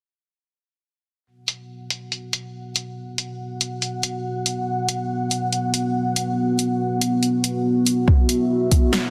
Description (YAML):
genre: deep dubstep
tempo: 141 BPM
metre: 4/4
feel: swing 61% on 16ths, half-time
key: unclear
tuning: A4 = 438 Hz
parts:
  - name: dark analog pad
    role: sustained chords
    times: 1.3-9.1 s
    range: B3 to F#5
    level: -25 LUFS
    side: equal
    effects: chorus
  - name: deep house drum kit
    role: drums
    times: 1.5-9.0 s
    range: hi-hat, snare drum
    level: -24 LUFS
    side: equal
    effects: overdrive, low-pass filter on hats, low-pass filter on snare, low-pass filter on room
  - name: electronic kick drum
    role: drums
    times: 8.1-8.8 s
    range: none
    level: -18 LUFS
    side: equal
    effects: overdrive
room: light reverb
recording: dense, heavily limited modern master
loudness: -23 LUFS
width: mono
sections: 1.3-9.1 A section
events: none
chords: 1.3 B5